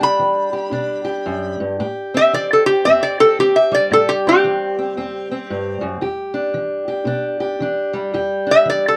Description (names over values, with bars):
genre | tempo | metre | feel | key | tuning
acoustic country blues, solo or duo | 113 BPM | 4/4 | swing 63% on 8ths | E minor | A4 = 439 Hz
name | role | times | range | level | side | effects
lap resonator guitar | melody | 0.0-9.0 s | G4 to B5 | -16 LUFS | equal | none
fingerpicked steel-string acoustic guitar | accompaniment | 0.0-9.0 s | E2 to G4 | -23 LUFS | equal | none
room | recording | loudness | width
moderate booth ambience, RT60 0.2 s | none | -18 LUFS | mono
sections
0.0-9.0 A section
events
none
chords
0.0 Em7; 1.8 Am7; 6.0 Em7